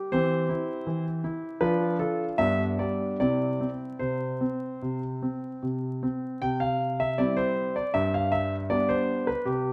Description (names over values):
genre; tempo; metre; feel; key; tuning
classical-period piano sonatina; 77 BPM; 4/4; uneven beats; C major; A4 = 435 Hz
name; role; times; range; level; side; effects
clear grand piano; solo; 0.0-9.7 s; G2 to G5; -28 LUFS; equal; none
room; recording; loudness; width
moderate recital hall reverb, RT60 1.6 s; dark, warm production, vinyl crackle; -28 LUFS; mono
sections
0.0-6.4 A section; 6.4-9.7 B section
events
none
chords
0.1 C/E; 1.6 Dm/F; 2.4 G; 3.2 C; 8.0 G